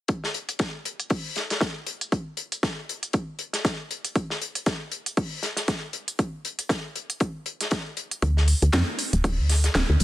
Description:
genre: deep house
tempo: 118 BPM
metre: 4/4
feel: swing 57% on 16ths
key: D minor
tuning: A4 = 439 Hz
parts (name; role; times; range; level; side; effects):
- electronic kick drum; drums; 0.1-9.9 s; none; -26 LUFS; equal; high-pass filter on kick, vintage 12-bit sampler grit
- house drum kit; drums; 0.1-10.0 s; hi-hat, snare drum; -28 LUFS; right 1 dB; low-pass filter on hats, vintage 12-bit sampler grit, low-pass filter on snare
- natural country drum kit; drums; 0.1-10.0 s; hi-hat, snare drum; -31 LUFS; left 2 dB; sidechain pumping on hats, high-pass filter on hats, vintage 12-bit sampler grit, high-pass filter on snare, high-pass filter on room
- woody FM bass; bass; 8.2-10.0 s; D1 to F2; -20 LUFS; equal; sidechain pumping
room: studio ambience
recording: dense, heavily limited modern master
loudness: -24 LUFS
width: side -15 dB against mid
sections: 0.1-10.0 A section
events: filter sweep on drum 0.1-10.0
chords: none

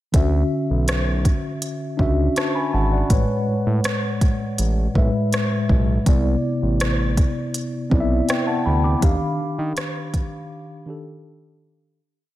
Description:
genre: contemporary R&B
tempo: 81 BPM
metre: 4/4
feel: straight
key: D lydian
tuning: A4 = 440 Hz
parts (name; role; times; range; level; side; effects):
- mellow tine electric piano; accompaniment; 0.1-12.0 s; A2 to D6; -22 LUFS; left 1 dB; medium stereo tremolo
- smooth synth bass; bass; 0.1-9.7 s; G#1 to Eb3; -21 LUFS; equal; none
- smooth R&B drum kit; drums; 0.1-10.3 s; hi-hat, kick drum, rim click; -21 LUFS; equal; none
room: moderate lush hall reverb, RT60 2.5 s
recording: dreamy mix soaked in reverb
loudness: -18 LUFS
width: side -14 dB against mid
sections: 0.1-12.0 verse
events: fade-out 9.0-12.0; break 10.5-12.0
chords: 0.1 Dmaj9; 3.1 Amaj9; 6.1 Cmaj9; 9.0 Ebmaj9

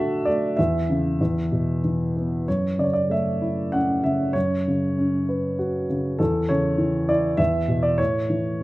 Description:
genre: classical, lyrical solo piano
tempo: 97 BPM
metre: 3/4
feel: uneven beats, rubato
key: A major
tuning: A4 = 442 Hz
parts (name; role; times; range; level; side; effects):
- dark grand piano; solo; 0.0-8.6 s; E2 to A5; -20 LUFS; equal; none
room: light reverb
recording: close, detailed microphones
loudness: -20 LUFS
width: side -18 dB against mid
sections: 0.0-8.6 A section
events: none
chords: 0.0 Dadd9; 0.6 C#m/E; 1.2 E5; 2.5 F#m7; 4.4 Bsus2/F#; 6.2 Aadd11/E; 7.4 E5; 8.0 A

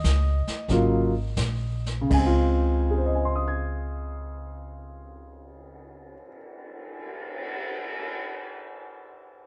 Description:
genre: jazz piano trio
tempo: 78 BPM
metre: 4/4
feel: swing 68% on 8ths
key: Db major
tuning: A4 = 441 Hz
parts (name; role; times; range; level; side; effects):
- warm upright piano; melody; 0.0-7.5 s; Db3 to Ab6; -28 LUFS; equal; none
- upright bass; bass; 0.0-6.2 s; Ab1 to Db2; -28 LUFS; equal; none
- jazz brush drum kit; drums; 0.0-8.1 s; brushed snare drum, crash cymbal, cymbal swell, hi-hat, kick drum, snare drum; -35 LUFS; equal; none
room: light reverb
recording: nothing above 11.0 kHz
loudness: -26 LUFS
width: mono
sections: 0.0-2.1 A section; 2.1-8.2 B section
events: slowing down 0.0-2.1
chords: 0.0 Absus4; 2.1 Dbmaj7

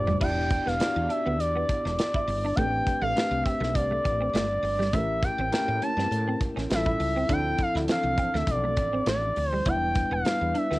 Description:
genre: polished 1980s jazz-funk pop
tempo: 102 BPM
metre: 4/4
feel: swing 54% on 16ths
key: A minor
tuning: A4 = 439 Hz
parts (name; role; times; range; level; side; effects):
- expressive portamento lead; melody; 0.0-10.8 s; D5 to A5; -27 LUFS; equal; chorus, cassette tape
- mellow tine electric piano; accompaniment; 0.0-10.8 s; E3 to D5; -32 LUFS; left 1 dB; medium stereo tremolo, lush chorus, cassette tape
- woody fretless electric bass; bass; 0.0-10.8 s; E1 to A2; -31 LUFS; equal; ensemble chorus
- clean electric guitar; riff; 0.1-10.8 s; G3 to E4; -33 LUFS; right 2 dB; ensemble chorus, cassette tape
- modern studio drum kit; drums; 0.1-10.8 s; crash cymbal, hi-hat, kick drum, snare drum, toms; -30 LUFS; equal; none
room: light reverb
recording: home recording on cassette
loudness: -24 LUFS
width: side -19 dB against mid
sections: 0.2-10.8 A section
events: drum fill 0.0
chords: 0.2 Em7; 2.6 Am11; 4.9 A7b9; 6.7 A7b13; 7.3 Dm9; 9.7 Em7

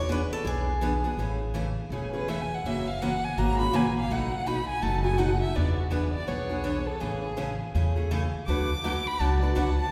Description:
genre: acoustic string swing (jazz manouche)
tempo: 164 BPM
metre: 4/4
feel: swing 61% on 8ths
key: A major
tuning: A4 = 441 Hz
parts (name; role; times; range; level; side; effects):
- picked steel-string acoustic guitar; melody; 0.0-1.1 s; G#4 to B4; -35 LUFS; equal; none
- upright bass; bass; 0.0-9.9 s; E1 to E2; -31 LUFS; equal; none
- picked steel-string acoustic guitar; accompaniment; 0.1-9.7 s; B2 to B4; -32 LUFS; equal; none
- warm violin; second line; 1.9-9.9 s; F#4 to D6; -34 LUFS; equal; none
room: wet concert hall reverb, RT60 2.6 s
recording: recorded in a church or concert hall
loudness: -28 LUFS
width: mono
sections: 0.0-1.2 A section; 1.2-9.9 A section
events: steel-string acoustic guitar solo 0.0-1.2; violin solo 1.2-9.9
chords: 0.0 E7; 1.2 Amaj7; 2.6 F#7; 4.1 B7; 5.6 E7; 7.0 Amaj7; 8.5 D6

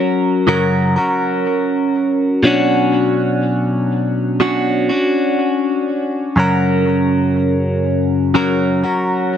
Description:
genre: pop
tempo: 61 BPM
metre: 4/4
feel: straight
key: B harmonic minor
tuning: A4 = 439 Hz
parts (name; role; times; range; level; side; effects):
- direct-recorded clean electric guitar; solo; 0.0-9.4 s; F#2 to A#4; -14 LUFS; equal; phaser, tape echo
room: light reverb, digital ambience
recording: none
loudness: -14 LUFS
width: side -9 dB against mid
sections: 0.0-9.4 A section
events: none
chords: 0.0 F#; 2.4 Bmadd9; 6.4 F#

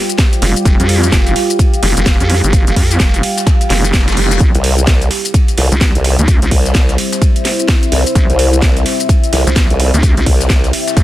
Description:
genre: bass house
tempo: 128 BPM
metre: 4/4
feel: swing 61% on 16ths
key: unclear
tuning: A4 = 441 Hz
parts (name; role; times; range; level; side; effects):
- sweeping resonant pad; sustained chords; 0.0-11.0 s; G3 to C5; -22 LUFS; equal; chorus, phaser, sidechain pumping
- deep dark ambient pad; texture; 0.0-11.0 s; C4 to F5; -21 LUFS; equal; chorus, built-in reverb, sidechain pumping
- house drum kit; drums; 0.1-11.0 s; hi-hat, shaker, snare drum; -18 LUFS; equal; none
- dusty soul sampler-style drum kit; drums; 0.2-11.0 s; ride cymbal, snare drum; -27 LUFS; right 2 dB; sidechain pumping on cymbals, high-pass filter on cymbals, high-pass filter on snare, high-pass filter on room
- electronic kick drum; drums; 0.2-11.0 s; none; -12 LUFS; equal; none
- vowel-sweep wobble bass; bass; 0.4-11.0 s; F1 to F2; -13 LUFS; equal; chorus, tube saturation, sidechain pumping
- reverse cymbal; sound effects; 3.7-4.4 s; none; -26 LUFS; left 8 dB; none
- formant-sweep wobble bass; bass; 4.5-10.7 s; C2; -13 LUFS; equal; chorus, overdrive, sidechain pumping
room: digital ambience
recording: dense, heavily limited modern master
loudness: -9 LUFS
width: side -15 dB against mid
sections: 0.0-11.0 A section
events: reverse cymbal 3.7-4.4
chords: 0.0 Fsus2; 4.4 C

